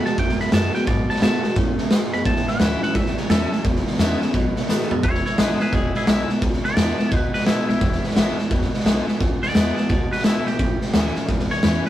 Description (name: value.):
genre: rockabilly.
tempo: 173 BPM.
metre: 4/4.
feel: swing 64% on 8ths.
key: E mixolydian.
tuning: A4 = 440 Hz.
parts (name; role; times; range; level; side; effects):
twangy electric guitar; melody; 0.0-11.9 s; E4 to B5; -27 LUFS; equal; none.
picked steel-string acoustic guitar; accompaniment; 0.0-11.9 s; E2 to F#4; -25 LUFS; left 1 dB; none.
electric guitar through a small old amp; riff; 0.0-5.0 s; E2 to A3; -27 LUFS; right 3 dB; none.
upright bass; bass; 0.1-11.9 s; E1 to B2; -27 LUFS; equal; none.
raw garage drum kit; drums; 0.1-11.9 s; hi-hat, kick drum, snare drum, toms; -20 LUFS; equal; none.
room: light reverb.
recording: rough rehearsal-room recording.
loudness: -18 LUFS.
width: side -13 dB against mid.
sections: 0.0-5.0 A section; 5.0-11.9 A section.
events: drum fill 4.7-5.0.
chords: 0.0 B7; 2.3 A7; 3.6 E7; 4.3 B7; 5.0 E7; 10.6 A7.